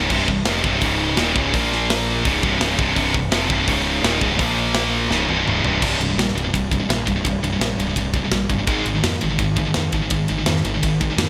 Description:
heavy metal; 168 BPM; 4/4; straight; C phrygian; A4 = 440 Hz
distorted electric guitar; riff; 0.0-11.3 s; C2 to Bb3; -25 LUFS; equal; overdrive
high-gain distorted guitar; riff; 0.0-11.3 s; C2 to Bb3; -25 LUFS; equal; distortion
fuzz picked electric bass; bass; 0.0-11.3 s; C1 to F2; -28 LUFS; equal; overdrive
tight metal drum kit; drums; 0.1-11.3 s; crash cymbal, hi-hat, kick drum, ride cymbal, snare drum, toms; -26 LUFS; equal; gated reverb
moderate lush hall reverb, RT60 1.5 s, small room ambience; bright 1980s-style digital production; -20 LUFS; mono
0.0-5.8 A section; 5.8-11.3 B section
drum fill 5.1-5.8
0.0 C5; 0.8 Db5; 1.2 Absus24; 1.5 Bb5; 2.2 C5; 3.7 Db5; 4.0 Absus24; 4.4 Bb5; 5.1 C5; 8.7 Ab5

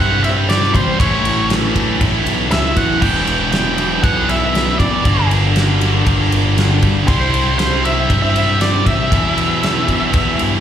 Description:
quiet-loud alternative rock; 118 BPM; 4/4; straight; E minor; A4 = 439 Hz
octave-fuzz lead guitar; melody; 0.0-10.6 s; C5 to G5; -19 LUFS; right 1 dB; distortion, slapback echo
phased string machine; sustained chords; 0.0-10.6 s; D4 to A5; -32 LUFS; equal
heavy high-gain guitar; riff; 0.0-10.6 s; G2 to E4; -20 LUFS; right 13 dB; distortion
scooped high-gain guitar; riff; 0.0-10.6 s; E2 to C4; -21 LUFS; left 11 dB; distortion
fuzz fingered electric bass; bass; 0.0-10.6 s; E1 to G2; -18 LUFS; equal; overdrive
huge arena drum kit; drums; 0.2-10.5 s; crash cymbal, kick drum, ride cymbal, snare drum; -19 LUFS; equal
light reverb; live gig heard through the venue's PA, club reverb; -12 LUFS; side -9 dB against mid
0.0-10.6 A section
0.0 C; 1.0 A; 3.0 Em; 5.0 Gm; 7.1 C; 9.1 Em

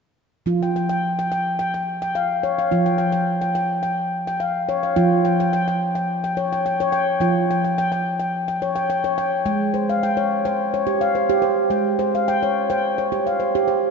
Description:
world meditative; 107 BPM; 4/4; straight; F hirajoshi; A4 = 440 Hz
handpan; arpeggios; 0.5-13.9 s; F3 to G5; -18 LUFS; equal
wet concert hall reverb, RT60 2.2 s; nothing above 7.7 kHz; -19 LUFS; side -5 dB against mid
0.5-5.0 A section; 5.0-13.9 B section
0.5 Fsus2; 9.5 Ab

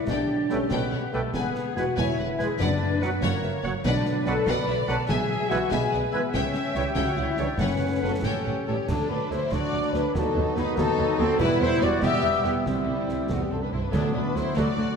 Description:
cinematic, heroic adventure film score; 96 BPM (dotted quarters); 6/8; straight; B minor, D mixolydian from 8.9 s; A4 = 441 Hz
large flute ensemble; second line; 0.0-14.8 s; A4 to E6; -34 LUFS; left 2 dB
rich symphonic viola section; accompaniment; 0.0-14.9 s; D3 to E5; -36 LUFS; right 1 dB
dark French horn section; sustained chords; 0.0-15.0 s; A3 to E5; -28 LUFS; left 4 dB
warm symphonic violin section; melody; 0.1-15.0 s; E4 to G#5; -37 LUFS; left 6 dB
rich symphonic violin section; second line; 0.1-15.0 s; G3 to E5; -37 LUFS; left 2 dB
clear symphonic double bass section; bass; 0.1-14.9 s; E1 to D#2; -32 LUFS; right 4 dB
warm symphonic cello section; bass; 0.1-14.9 s; C2 to C#3; -33 LUFS; right 3 dB
concert snare drum, concert bass drum and clash cymbals; drums; 0.1-14.8 s; -34 LUFS; equal
timpani; percussion; 0.1-8.2, 13.9-14.5 s; F#2 to D3; -32 LUFS; left 1 dB
dark clarinet; second line; 0.5-15.0 s; A3 to E5; -34 LUFS; equal
warm oboe; second line; 0.5-8.7 s; F#5 to G#5; -38 LUFS; right 2 dB
clear trombone section; sustained chords; 0.5-15.0 s; C#3 to D4; -34 LUFS; right 4 dB
dark trumpet section; stabs; 0.5-15.0 s; G3 to C#5; -35 LUFS; right 2 dB
wet concert hall reverb, RT60 1.9 s; -22 LUFS; side -6 dB against mid
0.0-8.9 A section; 8.9-15.0 B section
0.1 Gadd9/B; 1.3 E; 2.6 Bm/F#; 3.2 F#; 3.9 Bm; 5.1 E/B; 6.3 C#dim; 7.6 F#sus4; 8.2 A7; 8.9 D; 10.2 B7/D#; 11.4 Em; 12.7 C; 13.9 D

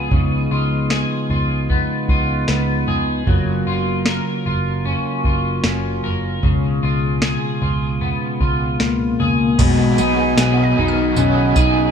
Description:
dream pop; 76 BPM; 4/4; straight; B lydian; A4 = 441 Hz
mellow tonewheel organ; sustained chords; 0.0-11.9 s; B2 to B5; -23 LUFS; right 2 dB; slow rotary speaker
electric guitar at the edge of break-up; arpeggios; 0.0-11.9 s; B2 to A#4; -21 LUFS; left 3 dB; lush chorus, tape echo
vintage muted picked electric bass; bass; 0.0-11.9 s; F#1 to C#2; -23 LUFS; equal
soft vintage rhythm box; drums; 0.1-11.7 s; crash cymbal, kick drum, snare drum, tambourine, toms; -20 LUFS; right 1 dB
soft octave-layered synth lead; melody; 8.8-11.9 s; G#3 to D#4; -19 LUFS; left 2 dB; chorus, tape echo
crunchy overdriven guitar; accompaniment; 9.6-11.9 s; B2 to G#4; -23 LUFS; right 4 dB; tremolo, ensemble chorus
hollow square pluck; texture; 10.4-11.9 s; B4 to E#6; -32 LUFS; right 4 dB
moderate echo chamber reverb, RT60 2.1 s; -16 LUFS; side -7 dB against mid
0.0-9.6 A section; 9.6-11.9 B section
0.0 C#7; 3.3 F#maj7; 6.4 C#7; 9.6 B6

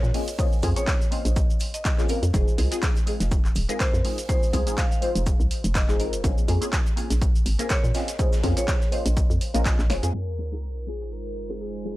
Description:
deep house; 123 BPM; 4/4; swing 55% on 16ths; Bb minor; A4 = 440 Hz
marimba with hard mallets; melody; 0.0-10.0 s; Bb4 to F5; -33 LUFS; equal; analog delay
filtered dub chord stab; stabs; 0.0-12.0 s; Ab3 to C5; -30 LUFS; left 2 dB; phaser, ensemble chorus, sidechain pumping, tape echo
hollow knocking FM bass; bass; 0.0-10.1 s; Eb1 to Bb2; -24 LUFS; equal; tube saturation, sidechain pumping
punchy analog drum machine; drums; 0.0-11.8 s; handclaps, hi-hat, shaker, snare drum; -32 LUFS; equal; studio reverb
gated 80s drum kit; drums; 0.1-12.0 s; hi-hat, shaker, snare drum; -40 LUFS; right 2 dB; sidechain pumping on hats, high-pass filter on hats, low-pass filter on hats, studio reverb, high-pass filter on snare, low-pass filter on snare, sidechain pumping on perc, high-pass filter on perc, low-pass filter on perc, high-pass filter on room, low-pass filter on room
electronic kick drum; drums; 0.4-9.8 s; -23 LUFS; equal; studio reverb
mellow horn-like synth lead; melody; 10.1-12.0 s; Ab4 to Bb4; -36 LUFS; left 2 dB; lush chorus
warbly tape-like pad; sustained chords; 10.6-12.0 s; Ab3 to C5; -38 LUFS; right 4 dB; chorus, built-in reverb, sidechain pumping
sub drop; sound effects; 10.1-12.0 s; -32 LUFS; equal
small room ambience; low-pass filter; -21 LUFS; side -17 dB against mid
0.0-10.1 A section; 10.1-12.0 B section
drum fill 9.9; impact 10.1-12.0; filter sweep 10.1-12.0
0.0 Bbm9; 2.3 Fm7; 6.2 Bbm9; 10.1 Fm7

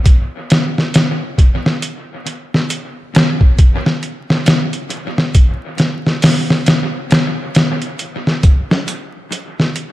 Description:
trip hop; 68 BPM; 4/4; swing 60% on 16ths
trip hop sampler-style drum kit; drums; 0.1-9.9 s; hi-hat, kick drum, snare drum; -12 LUFS; equal; dub echo
light reverb, digital ambience; echo-heavy mix, vinyl crackle; -12 LUFS; side -16 dB against mid
0.0-9.9 A section

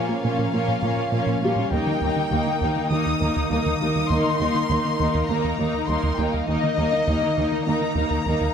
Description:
cinematic; 101 BPM; 4/4; straight; A4 = 440 Hz
warm symphonic violin section; melody; 0.0-8.5 s; Eb5 to Eb6; -27 LUFS; left 4 dB
rich symphonic violin section; second line; 0.0-8.5 s; Eb4 to Db5; -30 LUFS; left 2 dB
warm symphonic viola section; accompaniment; 0.0-8.5 s; Bb3 to Eb4; -29 LUFS; left 1 dB
hollow soft pad; sustained chords; 0.0-8.5 s; Eb3 to Bb4; -28 LUFS; right 1 dB; chorus
soft round pluck; arpeggios; 0.0-8.5 s; Eb3 to Bb4; -34 LUFS; left 2 dB
plucky analog bass; riff; 0.0-8.5 s; Eb2 to Bb3; -27 LUFS; right 2 dB
warm studio cello section; bass; 0.0-8.4 s; Eb2 to Bb2; -28 LUFS; right 3 dB
felt-muted upright piano; texture; 0.0-8.5 s; G3 to Bb4; -35 LUFS; left 2 dB
wet scoring stage reverb, RT60 1.6 s; -20 LUFS; side -7 dB against mid
0.0-8.5 A section
0.0 Bbm; 1.7 Eb

